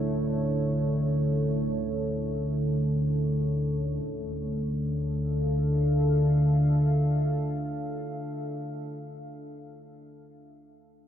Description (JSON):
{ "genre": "dark ambient drone", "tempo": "free time", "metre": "none", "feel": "none", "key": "D harmonic minor", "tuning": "A4 = 439 Hz", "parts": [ { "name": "deep dark ambient pad", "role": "sustained chords", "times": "0.0-9.2 s", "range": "D3 to F5", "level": "-30 LUFS", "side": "equal", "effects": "chorus, built-in reverb" }, { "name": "deep rumbling drone", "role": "drone", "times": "0.0-8.6 s", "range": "D2 to D3", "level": "-27 LUFS", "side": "equal", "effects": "built-in reverb" } ], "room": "wet cathedral reverb, RT60 5.8 s", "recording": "in a vast, echoing space", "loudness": "-25 LUFS", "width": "side -10 dB against mid", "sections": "0.0-4.0 A section; 4.0-9.3 B section", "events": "none", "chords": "0.0 A/D; 4.0 Dmadd9", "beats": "free time" }